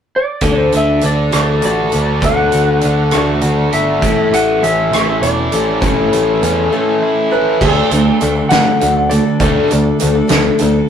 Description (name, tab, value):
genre	folk rock and heartland rock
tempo	67 BPM (dotted quarters)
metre	6/8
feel	straight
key	D major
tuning	A4 = 438 Hz
part	electric slide guitar	melody	0.2-10.6 s	A4 to F#5	-18 LUFS	equal	none
part	picked twelve-string acoustic guitar	accompaniment	0.4-10.9 s	A2 to A4	-17 LUFS	left 5 dB	none
part	biting overdriven guitar	riff	0.4-10.9 s	A2 to F#4	-17 LUFS	right 2 dB	none
part	picked electric bass	bass	0.4-10.8 s	E1 to G2	-18 LUFS	equal	none
part	loose indie drum kit	drums	0.4-10.7 s	crash cymbal, hi-hat, kick drum, rim click, snare drum	-19 LUFS	right 2 dB	none
room	moderate studio reverb, RT60 0.6 s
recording	rough rehearsal-room recording, tube saturation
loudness	-11 LUFS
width	side -8 dB against mid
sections	0.4-7.6 A section; 7.6-10.9 B section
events	none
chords	0.4 D; 4.0 A; 7.6 D